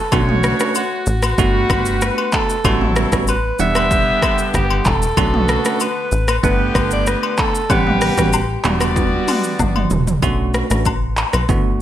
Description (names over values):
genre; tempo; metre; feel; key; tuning
afrobeats; 95 BPM; 4/4; straight; B minor; A4 = 440 Hz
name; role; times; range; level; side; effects
clear alto saxophone; melody; 0.0-9.9 s; F#4 to E5; -22 LUFS; equal; digital delay
warm horn section; second line; 0.1-9.9 s; D3 to F#5; -25 LUFS; left 2 dB; none
bell-like tine electric piano; accompaniment; 0.1-11.8 s; G3 to F#5; -22 LUFS; right 6 dB; fast stereo tremolo
plucky analog bass; bass; 0.1-11.8 s; E1 to B1; -20 LUFS; equal; none
deep house drum kit; drums; 0.1-11.6 s; handclaps, hi-hat, kick drum, rim click, shaker, toms; -19 LUFS; equal; overdrive, gated reverb
agogo bells and woodblock; percussion; 0.1-11.5 s; none; -26 LUFS; left 8 dB; none
room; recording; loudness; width
light reverb; bright 1980s-style digital production; -14 LUFS; side -11 dB against mid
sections
0.0-10.2 A section; 10.2-11.8 B section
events
drum fill 9.0-10.2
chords
0.1 Bm7; 1.4 Gmaj7; 2.6 A13; 3.6 Em9; 5.2 Bm7; 6.4 Gmaj7; 7.7 A13; 8.6 Em9; 10.2 Bm7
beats
| 0.12 0.75 1.38 2.02 | 2.65 3.28 3.91 4.54 | 5.17 5.80 6.44 7.07 | 7.70 8.33 8.96 9.59 | 10.22 10.86 11.49